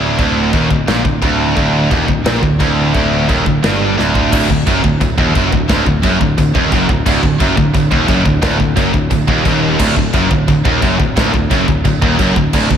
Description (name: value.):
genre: heavy metal.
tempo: 175 BPM.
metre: 4/4.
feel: straight.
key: unclear.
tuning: A4 = 440 Hz.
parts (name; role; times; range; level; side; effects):
scooped high-gain guitar; riff; 0.0-12.8 s; D2 to Bb2; -17 LUFS; left 6 dB; distortion.
scooped high-gain guitar; riff; 0.0-12.8 s; D2 to Bb2; -19 LUFS; equal; distortion.
tight distorted guitar; riff; 0.0-12.8 s; D2 to Bb2; -17 LUFS; right 8 dB; distortion.
picked electric bass; bass; 0.0-12.8 s; D1 to Bb1; -19 LUFS; equal; none.
modern studio drum kit; drums; 0.2-12.8 s; china cymbal, crash cymbal, kick drum, snare drum; -17 LUFS; equal; none.
room: moderate concert hall reverb, RT60 2.2 s.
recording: big arena sound.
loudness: -11 LUFS.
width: side -8 dB against mid.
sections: 0.0-4.3 A section; 4.3-12.8 B section.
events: drum fill 4.0-4.3; half time 4.3-12.8.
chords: 0.0 Ebmaj7/D; 4.3 D.